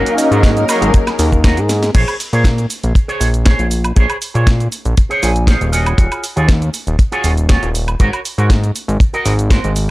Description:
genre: nu-disco, nu disco.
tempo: 119 BPM.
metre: 4/4.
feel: straight.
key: Bb minor.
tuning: A4 = 440 Hz.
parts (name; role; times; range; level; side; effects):
vibraphone with soft mallets; melody; 0.0-1.7 s; Bb4 to F5; -20 LUFS; left 2 dB; tape echo.
warm analog pad; accompaniment; 0.0-0.9 s; Gb3 to Bb4; -18 LUFS; equal; chorus, sidechain pumping.
muted studio string section; sustained chords; 0.0-1.9 s; Bb4; -28 LUFS; left 5 dB; sidechain pumping.
electric guitar with an envelope filter; riff; 0.0-9.7 s; F4 to Ab5; -21 LUFS; right 2 dB; lush chorus, vintage 12-bit sampler grit.
fat analog bass; bass; 0.0-9.9 s; Eb1 to Bb2; -15 LUFS; equal; none.
house drum kit; drums; 0.1-9.9 s; crash cymbal, hi-hat, shaker, snare drum, woodblock; -22 LUFS; right 1 dB; none.
kick drum; drums; 0.4-9.6 s; none; -12 LUFS; equal; none.
room: small room ambience.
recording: dry, gritty hardware recording, transformer saturation, cassette tape.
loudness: -12 LUFS.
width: side -19 dB against mid.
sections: 0.0-1.9 A section; 1.9-9.9 B section.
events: drop 0.0-1.9; drum fill 1.7; clean electric guitar fill 5.0-6.0.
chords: 0.0 Ab9sus4; 1.9 Bbm9; 5.7 Ebm11; 8.0 Ab9sus4.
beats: 0.44 0.94 1.44 | 1.95 2.45 2.96 3.46 | 3.96 4.47 4.97 5.48 | 5.98 6.49 6.99 7.49 | 8.00 8.50 9.01 9.51.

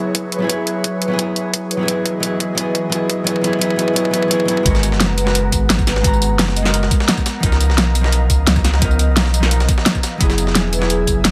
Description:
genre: liquid drum and bass.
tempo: 173 BPM.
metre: 4/4.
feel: straight.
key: G# minor.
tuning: A4 = 441 Hz.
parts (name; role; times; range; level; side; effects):
hollow-body jazz guitar; accompaniment; 0.0-11.3 s; E#3 to A#5; -24 LUFS; equal; delay.
airy breathy pad; sustained chords; 0.0-11.3 s; E3 to A#5; -30 LUFS; equal; chorus, sidechain pumping.
electronic kick drum; drums; 0.1-11.1 s; none; -22 LUFS; equal; overdrive, high-pass filter on kick, high-pass filter on room.
pop drum kit; drums; 0.1-11.3 s; hi-hat, snare drum, tambourine; -21 LUFS; equal; overdrive.
vibraphone with medium mallets; melody; 0.3-6.8, 10.7-11.3 s; G#4 to D#5; -26 LUFS; equal; tape echo.
warm sub bass; bass; 4.7-11.3 s; E1 to C#2; -19 LUFS; equal; none.
breakbeat sampler-style drum kit; drums; 4.7-11.3 s; hi-hat, snare drum; -26 LUFS; equal; high-pass filter on hats, high-pass filter on snare.
room: light reverb, digital ambience.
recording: none.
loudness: -17 LUFS.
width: mono.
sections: 0.0-4.7 A section; 4.7-11.3 B section.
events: build-up 0.0-4.7; drum fill 0.0-4.7; drop 4.7-11.3.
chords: 0.0 F#9sus4; 1.7 Emaj9; 4.7 G#m9; 7.4 C#13; 10.2 F#9sus4.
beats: 0.15 | 0.50 0.84 1.19 1.54 | 1.88 2.23 2.58 2.92 | 3.27 3.62 3.96 4.31 | 4.66 5.00 5.35 5.70 | 6.04 6.39 6.74 7.09 | 7.43 7.78 8.13 8.47 | 8.82 9.17 9.51 9.86 | 10.21 10.55 10.90 11.25.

